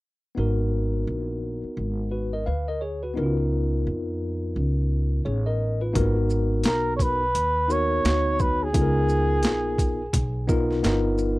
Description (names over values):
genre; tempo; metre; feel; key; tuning
hip hop, jazz-hop; 86 BPM; 4/4; swing 62% on 16ths; G# dorian; A4 = 440 Hz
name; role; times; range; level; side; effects
tine electric piano; accompaniment; 0.3-11.4 s; A#3 to E#5; -27 LUFS; left 2 dB; medium stereo tremolo
upright bass; bass; 0.4-11.4 s; G1 to E#2; -25 LUFS; equal; none
boom bap sampler-style drum kit; drums; 6.0-11.4 s; hi-hat, kick drum, shaker, snare drum; -24 LUFS; equal; overdrive
breathy flugelhorn; melody; 6.7-10.7 s; G#4 to C#5; -24 LUFS; right 1 dB; none
room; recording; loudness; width
little or no reverb; dry, close 1970s-style studio recording; -22 LUFS; side -20 dB against mid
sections
0.4-6.0 A section; 6.0-11.4 B section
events
none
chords
0.4 G#m7; 3.2 C#13; 6.0 G#m7; 8.7 C#13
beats
| 0.37 1.07 1.77 2.46 | 3.16 3.86 4.56 5.26 | 5.95 6.65 7.35 8.05 | 8.74 9.44 10.14 10.84